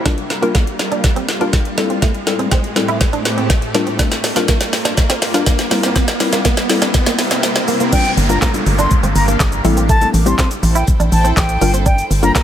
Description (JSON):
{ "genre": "dance-pop", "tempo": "122 BPM", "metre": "4/4", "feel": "straight", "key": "G dorian", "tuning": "A4 = 440 Hz", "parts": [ { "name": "shimmering ambient pad", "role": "sustained chords", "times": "0.0-12.4 s", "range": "G2 to G5", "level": "-23 LUFS", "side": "equal", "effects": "chorus, built-in reverb, sidechain pumping" }, { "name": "riser and downlifter", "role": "sound effects", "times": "0.0-11.9 s", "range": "none", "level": "-24 LUFS", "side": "right 1 dB", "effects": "none" }, { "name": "hollow square pluck", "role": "accompaniment", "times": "0.1-12.4 s", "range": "G3 to Bb4", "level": "-21 LUFS", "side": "left 5 dB", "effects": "chorus, sidechain pumping" }, { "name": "direct-recorded clean electric guitar", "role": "riff", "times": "0.1-12.4 s", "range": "A3 to E4", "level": "-23 LUFS", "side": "right 5 dB", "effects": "ensemble chorus" }, { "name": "smooth R&B drum kit", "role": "drums", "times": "0.1-12.4 s", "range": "crash cymbal, handclaps, hi-hat, kick drum, shaker, snare drum", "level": "-16 LUFS", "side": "equal", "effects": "none" }, { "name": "reedy concert flute", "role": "melody", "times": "7.9-12.4 s", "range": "G5 to C6", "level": "-20 LUFS", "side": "equal", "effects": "sidechain pumping, digital delay" }, { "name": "organ-like FM bass", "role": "bass", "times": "8.2-12.3 s", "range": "G1 to A1", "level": "-15 LUFS", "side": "equal", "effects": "sidechain pumping" } ], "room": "light reverb", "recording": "none", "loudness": "-13 LUFS", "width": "side -10 dB against mid", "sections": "0.0-7.9 A section; 7.9-12.4 B section", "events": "build-up 0.0-7.9; drum fill 0.0-7.9; riser 0.0-7.9; drop 7.9-12.4", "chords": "0.1 Gm7; 1.8 Am7; 3.7 Gm7; 5.7 C7; 7.9 Gm7; 9.6 Am7; 11.6 Gm7" }